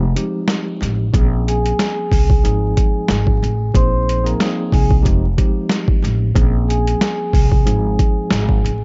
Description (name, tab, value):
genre	hip hop, boom-bap hip-hop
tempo	92 BPM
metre	4/4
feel	swing 56% on 16ths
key	F minor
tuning	A4 = 440 Hz
part	mellow tine electric piano	accompaniment	0.0-8.7 s	Ab2 to Ab4	-25 LUFS	equal	cassette tape, high-pass filter, low-pass filter
part	upright bass	bass	0.0-8.8 s	F1 to C2	-20 LUFS	equal	none
part	boom bap sampler-style drum kit	drums	0.2-8.8 s	hi-hat, kick drum, snare drum	-18 LUFS	equal	overdrive
part	vibraphone with soft mallets	melody	1.5-8.8 s	Ab4 to C6	-26 LUFS	equal	high-pass filter, low-pass filter, slapback echo
room	little or no reverb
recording	dark, warm production, vinyl crackle, nothing above 7.8 kHz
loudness	-17 LUFS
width	mono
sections	0.0-8.8 A section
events	break 0.0-1.1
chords	0.0 Fm9; 1.1 Bbm9; 2.4 Fm7/Ab; 3.7 Bb9sus4; 5.1 Fm9; 6.4 Bbm9; 7.7 Fm7/Ab